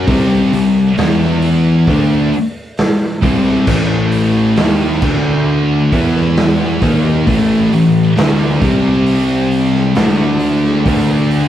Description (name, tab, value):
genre	stoner and doom metal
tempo	67 BPM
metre	4/4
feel	straight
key	unclear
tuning	A4 = 440 Hz
part	heavy high-gain guitar	riff	0.0-11.5 s	A2 to E4	-22 LUFS	equal	distortion
part	thick fuzz guitar	riff	0.0-11.5 s	A2 to E4	-15 LUFS	left 4 dB	distortion
part	thick fuzz guitar	riff	0.0-11.5 s	A2 to E4	-16 LUFS	right 4 dB	distortion
part	fuzz picked electric bass	bass	0.0-11.5 s	A1 to E2	-19 LUFS	equal	overdrive, tube saturation
part	raw garage drum kit	drums	0.1-11.5 s	crash cymbal, hi-hat, kick drum, snare drum	-17 LUFS	right 1 dB	none
room	light reverb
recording	rough rehearsal-room recording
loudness	-11 LUFS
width	side -11 dB against mid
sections	0.0-11.5 A section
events	none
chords	0.0 C5; 1.0 E5; 1.9 C5; 3.7 A5; 5.0 D5; 5.9 E5; 6.8 A5; 8.6 C5; 10.0 D5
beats	| 0.08 0.98 1.88 2.78 | 3.67 4.57 5.47 6.37 | 7.27 8.17 9.06 9.96 | 10.86